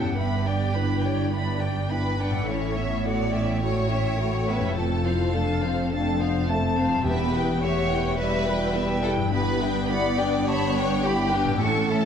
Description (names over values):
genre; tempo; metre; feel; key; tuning
cinematic; 105 BPM; 4/4; straight; unclear; A4 = 440 Hz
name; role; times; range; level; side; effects
rich chamber violin section; melody; 0.0-12.1 s; C#5 to C#6; -32 LUFS; equal; none
dark clarinet; second line; 0.0-12.1 s; G3 to E4; -33 LUFS; equal; none
small flute group; second line; 0.0-12.1 s; B4 to A5; -32 LUFS; left 2 dB; none
warm symphonic violin section; second line; 0.0-12.1 s; G4 to D5; -30 LUFS; left 2 dB; none
warm symphonic viola section; accompaniment; 0.0-12.1 s; A3 to D5; -31 LUFS; right 1 dB; none
mellow French horn section; sustained chords; 0.0-12.1 s; B3 to G4; -31 LUFS; left 4 dB; none
concert harp; arpeggios; 0.0-12.1 s; E2 to E5; -33 LUFS; left 7 dB; none
dark symphonic double bass section; bass; 0.0-12.1 s; E1 to A1; -30 LUFS; right 3 dB; none
warm studio cello section; bass; 0.0-12.1 s; E2 to A2; -30 LUFS; right 2 dB; none
timpani; percussion; 7.0-7.9 s; E2; -32 LUFS; equal; none
room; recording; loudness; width
moderate scoring stage reverb, RT60 1.7 s; none; -22 LUFS; side -8 dB against mid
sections
0.0-12.1 A section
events
none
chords
0.2 G; 2.5 A; 4.8 F; 7.1 Em; 9.3 G